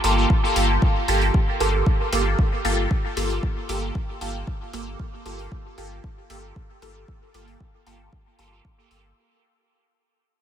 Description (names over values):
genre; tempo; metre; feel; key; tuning
dub techno; 115 BPM; 4/4; straight; G minor; A4 = 440 Hz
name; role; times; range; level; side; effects
resonant sweep polysynth; stabs; 0.0-9.0 s; Bb3 to A4; -24 LUFS; right 1 dB; chorus, phaser, sidechain pumping, dub echo
pure sine sub bass; bass; 0.0-9.1 s; G1; -25 LUFS; equal; tube saturation, sidechain pumping
electronic hi-hat; drums; 0.0-9.0 s; none; -32 LUFS; left 1 dB; none
electronic kick drum; drums; 0.3-8.8 s; none; -22 LUFS; equal; none
room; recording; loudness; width
light reverb, digital ambience; none; -20 LUFS; side -9 dB against mid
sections
0.0-9.2 A section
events
fade-out 0.0-9.2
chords
0.0 Gm9